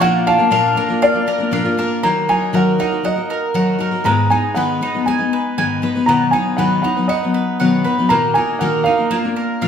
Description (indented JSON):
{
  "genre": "acoustic folk duo or small band",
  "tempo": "119 BPM",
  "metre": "4/4",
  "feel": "straight",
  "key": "Eb minor",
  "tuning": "A4 = 440 Hz",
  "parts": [
    { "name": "clear upright piano", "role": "melody", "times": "0.0-9.7 s", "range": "D5 to Bb5", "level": "-18 LUFS", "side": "right 1 dB", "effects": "none" },
    { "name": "picked steel-string acoustic guitar", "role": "accompaniment", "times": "0.0-9.7 s", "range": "Ab2 to Cb5", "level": "-18 LUFS", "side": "left 2 dB", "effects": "none" },
    { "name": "bowl-back mandolin", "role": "arpeggios", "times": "0.0-9.7 s", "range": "Ab3 to Ab5", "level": "-20 LUFS", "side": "right 1 dB", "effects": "none" }
  ],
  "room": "wet large studio reverb, RT60 0.9 s",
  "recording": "band playing live in one room",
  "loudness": "-14 LUFS",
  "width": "side -8 dB against mid",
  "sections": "0.0-2.0 A section; 2.0-9.7 B section",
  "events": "none",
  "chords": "0.0 Bb; 2.0 Ebm; 4.1 Abm; 6.1 B; 8.1 Ebm/Bb; 9.1 Bb"
}